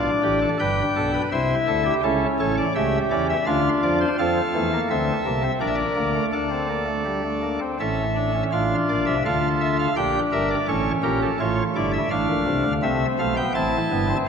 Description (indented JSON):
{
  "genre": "classical, baroque-style 4-part fugue for pipe organ",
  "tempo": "84 BPM",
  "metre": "3/4",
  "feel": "straight",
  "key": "unclear",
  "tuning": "A4 = 437 Hz",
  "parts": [
    { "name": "pipe organ, cornet", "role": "solo", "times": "0.0-14.2 s", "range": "G1 to A5", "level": "-20 LUFS", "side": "equal", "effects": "none" }
  ],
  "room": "wet church reverb, RT60 2.7 s",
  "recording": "none",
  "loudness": "-20 LUFS",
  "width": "side -6 dB against mid",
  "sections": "0.0-8.5 A section; 8.5-14.3 B section",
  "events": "none",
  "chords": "0.0 G7; 1.3 C; 2.0 A7; 3.5 Dm; 4.2 F; 5.6 Bb; 6.3 Asus4/D; 7.8 A; 8.5 Dm/A; 10.0 Gm/Bb; 10.7 A; 12.1 Dm/A; 12.8 Am"
}